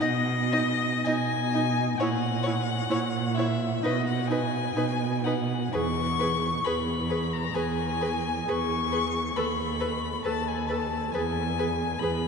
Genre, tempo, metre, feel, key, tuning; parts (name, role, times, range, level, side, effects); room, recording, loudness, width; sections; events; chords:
classical, slow romantic movement for string quartet; 54-70 BPM; 4/4; rubato; B major; A4 = 441 Hz
rich violin; melody; 0.0-12.3 s; D#5 to C#6; -30 LUFS; left 6 dB
dark violin; second line; 0.0-12.1 s; B4 to D#5; -34 LUFS; left 2 dB
rich viola; accompaniment; 0.0-12.1 s; D#4 to A4; -32 LUFS; right 1 dB
warm cello; bass; 0.0-12.3 s; D#2 to B2; -29 LUFS; right 3 dB
wet cathedral reverb, RT60 5.6 s; nothing above 11.0 kHz; -25 LUFS; side -5 dB against mid
0.0-12.3 A section
0.0 B; 2.0 F#7/A#; 3.8 B; 5.7 E; 9.4 B7/D#; 11.1 E